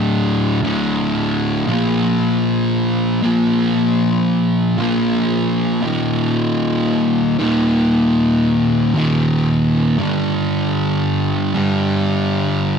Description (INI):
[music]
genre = metal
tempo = 58 BPM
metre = 4/4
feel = straight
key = unclear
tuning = A4 = 439 Hz
[part]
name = fuzz guitar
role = solo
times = 0.0-12.8 s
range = D2 to Bb3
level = -15 LUFS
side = equal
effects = distortion, ping-pong delay
[sound]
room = light reverb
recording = dark, warm production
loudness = -15 LUFS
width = side -6 dB against mid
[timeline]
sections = 0.0-12.8 A section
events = none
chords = 0.0 D5; 1.7 Bb5; 5.8 Eb5; 10.0 G5